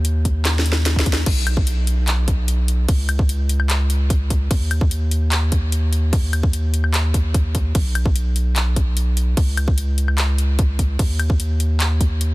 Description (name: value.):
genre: future bass.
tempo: 148 BPM.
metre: 4/4.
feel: half-time.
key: unclear.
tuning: A4 = 440 Hz.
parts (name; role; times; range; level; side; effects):
saturated sub bass; bass; 0.0-12.3 s; Cb2 to Eb2; -18 LUFS; equal; sidechain pumping.
trap drum kit; drums; 0.0-12.3 s; crash cymbal, handclaps, hi-hat, snare drum, woodblock; -25 LUFS; left 1 dB; none.
electronic kick drum; drums; 0.3-12.1 s; none; -18 LUFS; equal; none.
room: little or no reverb.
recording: dense, heavily limited modern master.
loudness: -16 LUFS.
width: side -20 dB against mid.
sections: 0.0-1.3 A section; 1.3-12.3 A section.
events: drop 0.0-1.3, 1.3-12.3; drum fill 0.5-1.3.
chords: none.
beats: 0.05 0.45 0.86 | 1.26 1.67 2.08 2.48 | 2.88 3.29 3.70 4.10 | 4.51 4.91 5.32 5.72 | 6.13 6.53 6.94 7.34 | 7.75 8.16 8.56 8.97 | 9.37 9.78 10.18 10.59 | 10.99 11.40 11.80 12.21.